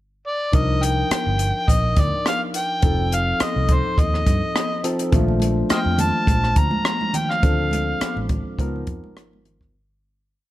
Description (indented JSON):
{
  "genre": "lush 1970s-style soul",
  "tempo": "104 BPM",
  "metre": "4/4",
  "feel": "swing 54% on 16ths",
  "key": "C dorian",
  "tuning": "A4 = 440 Hz",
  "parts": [
    { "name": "overdriven harmonica", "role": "melody", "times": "0.3-8.2 s", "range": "C5 to Bb5", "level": "-24 LUFS", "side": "equal", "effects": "none" },
    { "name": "barky tine electric piano", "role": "accompaniment", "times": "0.5-9.8 s", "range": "F3 to Bb4", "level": "-26 LUFS", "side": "left 2 dB", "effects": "overdrive, wide subtle chorus" },
    { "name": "vintage muted fingered electric bass", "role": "bass", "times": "0.5-9.0 s", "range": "F1 to G2", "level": "-22 LUFS", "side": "equal", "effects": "none" },
    { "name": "compact cocktail drum kit", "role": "drums", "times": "0.5-9.7 s", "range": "hi-hat, kick drum, rim click", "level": "-21 LUFS", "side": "equal", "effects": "none" },
    { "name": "congas", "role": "percussion", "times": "5.1-9.6 s", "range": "none", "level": "-28 LUFS", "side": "right 3 dB", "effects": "none" },
    { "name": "glockenspiel with brass mallets", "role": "texture", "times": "5.7-8.8 s", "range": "D6 to F6", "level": "-34 LUFS", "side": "equal", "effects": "none" }
  ],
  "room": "small room reverb",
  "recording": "faint mains hum",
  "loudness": "-18 LUFS",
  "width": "side -15 dB against mid",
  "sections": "0.0-0.5 pickup bar; 0.5-9.7 verse",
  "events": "fade-out 7.4-9.7",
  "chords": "0.0 N.C.; 0.5 Cm11; 2.8 F7; 5.1 Bbmaj7; 7.4 Dm7; 8.6 Db13"
}